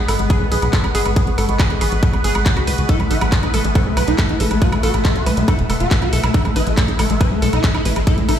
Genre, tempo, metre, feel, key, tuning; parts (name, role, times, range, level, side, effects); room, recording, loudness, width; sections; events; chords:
psychedelic trance; 139 BPM; 4/4; straight; A4 = 440 Hz
bubbling stepped-filter texture; sustained chords; 0.0-8.4 s; B3 to B4; -26 LUFS; right 1 dB; chorus, built-in reverb, sidechain pumping
tight sequencer bass; bass; 0.0-8.4 s; E1 to C#2; -19 LUFS; equal
airy breathy pad; texture; 0.0-8.4 s; G#3 to E6; -26 LUFS; left 2 dB; chorus, phaser, sidechain pumping
woody wave-folded pluck; riff; 0.1-8.4 s; F#4 to B4; -26 LUFS; moving between left 3 dB and right 4 dB; chorus, auto-pan, sidechain pumping, tape echo
garage drum kit; drums; 0.1-8.4 s; handclaps, hi-hat, woodblock; -25 LUFS; right 1 dB; studio reverb
electronic kick drum; drums; 0.3-8.2 s; -16 LUFS; equal; studio reverb
swarming rave lead; melody; 2.9-8.3 s; A3 to F#4; -21 LUFS; equal; chorus, phaser, sidechain pumping, tape echo
light reverb, digital ambience; played on a big sound system in a bare room, stone room reverb; -14 LUFS; side -9 dB against mid
0.0-8.4 A section
0.0 G#5; 2.9 A5